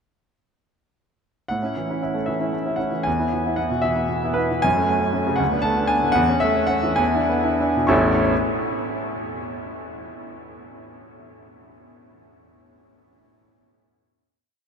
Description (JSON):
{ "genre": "classical, romantic character piece for solo piano", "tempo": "63-80 BPM (dotted quarters)", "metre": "6/8", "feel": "rubato", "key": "A major", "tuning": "A4 = 435 Hz", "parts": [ { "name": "clear concert grand piano", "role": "solo", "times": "1.5-8.3 s", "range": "A1 to C#6", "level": "-20 LUFS", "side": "equal", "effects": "none" } ], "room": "wet huge ambient reverb, RT60 7.2 s", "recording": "in a vast, echoing space", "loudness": "-19 LUFS", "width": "side -6 dB against mid", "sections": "1.5-7.9 A section; 7.9-9.6 final chord", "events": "slowing down 3.8-7.9", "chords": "1.5 A; 3.1 E; 4.6 F#m; 5.4 Bm7/D; 6.2 A/E; 7.0 E7; 7.9 A" }